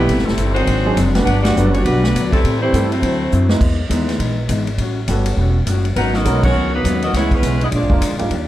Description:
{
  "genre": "jazz, big band swing",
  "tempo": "204 BPM",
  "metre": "4/4",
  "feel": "swing 61% on 8ths",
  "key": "unclear",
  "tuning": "A4 = 440 Hz",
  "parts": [
    { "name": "bright saxophone section", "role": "melody", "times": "0.0-3.5, 6.0-8.2 s", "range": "F#3 to F#5", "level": "-22 LUFS", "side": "left 1 dB", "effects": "plate reverb" },
    { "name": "mellow trombone section", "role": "second line", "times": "0.0-3.4, 6.0-8.2 s", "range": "C3 to F#4", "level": "-21 LUFS", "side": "right 1 dB", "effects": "none" },
    { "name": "warm concert grand piano", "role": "accompaniment", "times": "0.0-8.3 s", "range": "F#3 to B4", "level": "-23 LUFS", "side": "right 2 dB", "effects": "none" },
    { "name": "upright bass", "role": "bass", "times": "0.0-8.5 s", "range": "E1 to A2", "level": "-18 LUFS", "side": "equal", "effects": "none" },
    { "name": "vintage hollow-body jazz guitar", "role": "accompaniment", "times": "0.1-8.5 s", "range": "G2 to G4", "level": "-24 LUFS", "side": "left 4 dB", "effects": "none" },
    { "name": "swinging big-band drum kit", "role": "drums", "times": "0.1-8.4 s", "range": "crash cymbal, hi-hat, kick drum, ride cymbal, snare drum", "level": "-22 LUFS", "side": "equal", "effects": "none" }
  ],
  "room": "moderate large studio reverb, RT60 0.8 s",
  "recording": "dark, warm production",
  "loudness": "-14 LUFS",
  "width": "side -14 dB against mid",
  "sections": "0.0-8.3 A section",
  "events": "band accent 1.4, 6.4; drum fill 3.3",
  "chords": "0.1 Am7; 0.7 G#7#11; 1.3 Gmaj7; 2.4 Am7; 3.0 D9; 3.6 Emaj7; 4.8 A13; 6.0 G#m11; 7.1 C#m7; 7.7 A#7"
}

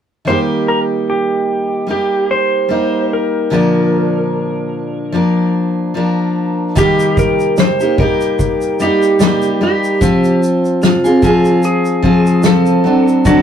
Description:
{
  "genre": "acoustic pop",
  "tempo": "74 BPM",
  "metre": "4/4",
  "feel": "swing 55% on 16ths",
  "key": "Eb major",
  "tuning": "A4 = 445 Hz",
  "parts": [
    { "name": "picked steel-string acoustic guitar", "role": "accompaniment", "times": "0.2-13.4 s", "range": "Bb2 to Bb4", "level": "-13 LUFS", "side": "equal", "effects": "none" },
    { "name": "clean lap steel guitar", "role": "melody", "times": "0.3-13.4 s", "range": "F4 to C5", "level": "-16 LUFS", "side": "equal", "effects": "none" },
    { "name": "natural country drum kit", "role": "drums", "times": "6.8-13.4 s", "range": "kick drum, shaker, snare drum", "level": "-16 LUFS", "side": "left 1 dB", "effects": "none" }
  ],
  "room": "wet booth ambience, RT60 0.2 s",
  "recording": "rough rehearsal-room recording",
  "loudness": "-11 LUFS",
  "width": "side -8 dB against mid",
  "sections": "0.3-6.8 A section; 6.8-13.4 B section",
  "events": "none",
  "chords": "0.3 Eb; 3.5 Bb; 6.8 Eb; 10.0 Fm; 12.9 D7"
}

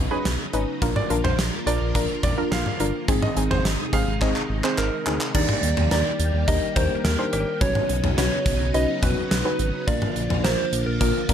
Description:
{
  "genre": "synth-pop",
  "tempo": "106 BPM",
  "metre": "4/4",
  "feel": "straight",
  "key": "Eb major",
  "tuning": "A4 = 441 Hz",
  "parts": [
    { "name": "string machine, violins", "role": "sustained chords", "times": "0.0-11.3 s", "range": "C3 to G4", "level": "-30 LUFS", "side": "equal", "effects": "ensemble chorus" },
    { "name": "smooth gliding synth bass", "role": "bass", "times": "0.0-11.3 s", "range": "G1 to Eb2", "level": "-25 LUFS", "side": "equal", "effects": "none" },
    { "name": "bright grand piano", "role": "second line", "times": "0.1-4.9 s", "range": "B4 to F5", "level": "-30 LUFS", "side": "right 4 dB", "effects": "digital delay" },
    { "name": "soft round pluck", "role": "accompaniment", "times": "0.1-11.3 s", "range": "Bb3 to C5", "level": "-28 LUFS", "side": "left 1 dB", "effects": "chorus" },
    { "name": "gated 80s drum kit", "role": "drums", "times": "0.3-11.3 s", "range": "cowbell, crash cymbal, handclaps, hi-hat, kick drum, snare drum, toms", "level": "-24 LUFS", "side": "equal", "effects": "none" },
    { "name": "soft struck synth lead", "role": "melody", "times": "4.8-11.3 s", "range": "Bb4 to Eb5", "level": "-27 LUFS", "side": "right 1 dB", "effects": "chorus, digital delay" }
  ],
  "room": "light reverb",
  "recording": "none",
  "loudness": "-20 LUFS",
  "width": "side -9 dB against mid",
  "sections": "0.0-5.3 A section; 5.3-11.3 B section",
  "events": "drum fill 4.2-5.3",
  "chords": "0.0 Badd9; 0.8 Bb; 3.1 Ab; 5.3 Ebmaj7; 7.6 Badd9; 9.9 Bb"
}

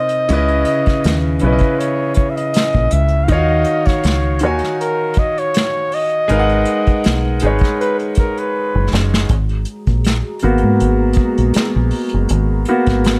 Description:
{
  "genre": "R&B, neo-soul",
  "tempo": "80 BPM",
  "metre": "4/4",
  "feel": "swing 53% on 16ths",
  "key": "unclear",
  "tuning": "A4 = 441 Hz",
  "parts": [
    { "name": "warm flugelhorn", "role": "melody", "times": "0.0-8.9 s", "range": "Gb4 to F5", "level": "-21 LUFS", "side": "equal", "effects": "slapback echo" },
    { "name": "clear grand piano", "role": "accompaniment", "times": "0.0-13.2 s", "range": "C3 to Ab5", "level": "-21 LUFS", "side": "equal", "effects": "none" },
    { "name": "unplugged drum kit", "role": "drums", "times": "0.1-13.2 s", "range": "hi-hat, kick drum, snare drum", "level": "-20 LUFS", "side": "equal", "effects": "none" },
    { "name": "deep dub fingered electric bass", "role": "bass", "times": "0.3-13.2 s", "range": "Gb1 to Ab2", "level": "-18 LUFS", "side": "equal", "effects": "none" },
    { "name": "hollow soft pad", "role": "sustained chords", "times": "9.3-13.2 s", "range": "Ab3 to Bb5", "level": "-28 LUFS", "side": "equal", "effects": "chorus" }
  ],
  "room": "little or no reverb",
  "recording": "dark, warm production",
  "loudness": "-16 LUFS",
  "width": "mono",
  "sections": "0.0-9.3 A section; 9.3-13.2 B section",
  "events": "drum fill 8.5-9.3; grand piano solo 9.3-13.2",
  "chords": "0.3 Dbm9; 3.3 Ebm9; 6.3 Abm9"
}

